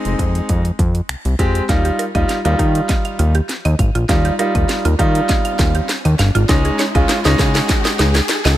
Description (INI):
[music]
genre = dance-pop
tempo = 100 BPM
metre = 4/4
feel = straight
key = unclear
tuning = A4 = 439 Hz
[part]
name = clear concert grand piano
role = accompaniment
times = 0.0-8.1 s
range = G3 to G4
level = -20 LUFS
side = right 1 dB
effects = sidechain pumping
[part]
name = fat analog bass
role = bass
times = 0.1-8.6 s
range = F1 to Eb3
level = -16 LUFS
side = equal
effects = sidechain pumping
[part]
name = house drum kit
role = drums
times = 0.1-8.6 s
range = finger snaps, hi-hat, kick drum, snare drum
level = -18 LUFS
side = equal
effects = none
[part]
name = mallet-like synth pluck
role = arpeggios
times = 1.7-8.6 s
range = Eb4 to Eb6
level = -26 LUFS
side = right 4 dB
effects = chorus, sidechain pumping, tape echo
[part]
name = riser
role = sound effects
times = 3.9-8.6 s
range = none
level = -28 LUFS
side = equal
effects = none
[part]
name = group handclap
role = percussion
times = 7.1-8.4 s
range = none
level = -28 LUFS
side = left 8 dB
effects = none
[sound]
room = digital ambience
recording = none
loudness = -14 LUFS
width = side -13 dB against mid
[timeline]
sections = 0.0-1.7 A section; 1.7-8.6 B section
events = build-up 1.7-8.6; drum fill 1.7-8.6; riser 3.9-8.6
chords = 0.0 Fm; 1.7 Ebadd9; 6.5 Dbsus2